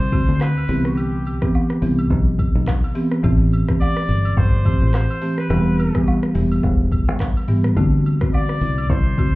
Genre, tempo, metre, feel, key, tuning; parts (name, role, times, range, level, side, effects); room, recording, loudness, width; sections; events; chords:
afrobeats; 106 BPM; 4/4; swing 58% on 16ths; E minor; A4 = 442 Hz
warm trumpet; melody; 0.0-9.4 s; G4 to D5; -28 LUFS; left 1 dB; digital delay
fingered electric bass; bass; 0.0-9.3 s; E1 to D2; -19 LUFS; equal
marimba with medium mallets; accompaniment; 0.1-9.4 s; D3 to G4; -21 LUFS; equal
afro-pop drum kit; drums; 0.1-9.3 s; handclaps, hi-hat, kick drum, rim click, shaker, toms; -20 LUFS; equal
agogo bells and woodblock; percussion; 0.1-9.3 s; -37 LUFS; right 2 dB
little or no reverb; heard muffled through a wall, club reverb, EQ; -16 LUFS; side -19 dB against mid
0.0-9.4 A section
0.0 D7; 0.7 Cmaj7; 3.2 Am7; 5.5 Em; 7.8 D7